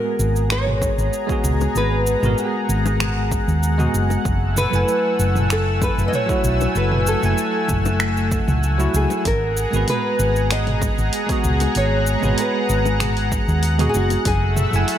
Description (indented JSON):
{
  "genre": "sunset chillout",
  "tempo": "96 BPM",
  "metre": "4/4",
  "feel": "straight",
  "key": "unclear",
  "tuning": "A4 = 439 Hz",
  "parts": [
    { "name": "nylon-string guitar", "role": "melody", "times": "0.0-15.0 s", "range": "F#4 to D#5", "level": "-24 LUFS", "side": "equal", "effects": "tape echo" },
    { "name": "bell-like tine electric piano", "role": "accompaniment", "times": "0.0-15.0 s", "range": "F#3 to G#5", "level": "-25 LUFS", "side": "moving between left 3 dB and right 5 dB", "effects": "fast stereo tremolo, auto-pan, low-pass filter, tape echo" },
    { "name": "lush unison pad", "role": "sustained chords", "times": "0.0-15.0 s", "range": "A3 to E6", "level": "-25 LUFS", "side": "left 1 dB", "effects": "chorus" },
    { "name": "hollow-body short-scale fingered electric bass", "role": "bass", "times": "0.2-14.8 s", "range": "F#1 to D#2", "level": "-20 LUFS", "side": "equal", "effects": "none" },
    { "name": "deep house drum kit", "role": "drums", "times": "0.2-15.0 s", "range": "cabasa, finger snaps, hi-hat, toms", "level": "-27 LUFS", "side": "right 1 dB", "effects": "none" },
    { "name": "electronic kick drum", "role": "drums", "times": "0.8-14.4 s", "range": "none", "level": "-25 LUFS", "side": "equal", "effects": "overdrive" },
    { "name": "bongos", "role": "percussion", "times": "0.8-14.2 s", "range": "none", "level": "-32 LUFS", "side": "left 7 dB", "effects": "none" }
  ],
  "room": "light reverb, digital ambience",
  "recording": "none",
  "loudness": "-17 LUFS",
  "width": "side -10 dB against mid",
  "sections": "0.0-15.0 A section",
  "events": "none",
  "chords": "0.0 G#m9; 4.3 F#m9; 9.3 G#m9; 14.3 F#m9"
}